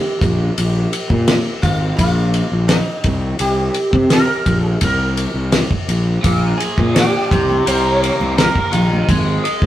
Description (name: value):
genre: psychedelic rock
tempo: 84 BPM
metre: 4/4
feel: straight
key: C minor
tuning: A4 = 440 Hz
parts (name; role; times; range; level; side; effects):
- sitar; melody; 0.0-9.4 s; Eb4 to C5; -21 LUFS; right 1 dB; none
- fuzz fingered electric bass; bass; 0.2-9.7 s; Ab1 to C3; -18 LUFS; equal; overdrive
- damped 70s drum kit; drums; 0.2-9.7 s; kick drum, ride cymbal, snare drum; -18 LUFS; equal; none
- overdriven electric guitar; riff; 6.2-9.7 s; Bb2 to Eb5; -20 LUFS; equal; phaser
- congas; percussion; 6.2-9.7 s; none; -25 LUFS; right 2 dB; none
room: moderate stone room reverb, RT60 1.1 s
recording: rough rehearsal-room recording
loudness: -14 LUFS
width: side -13 dB against mid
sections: 0.0-9.7 A section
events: none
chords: 0.2 Bb5; 3.0 C5; 6.2 Bb7; 7.3 Cm7; 9.1 Ab5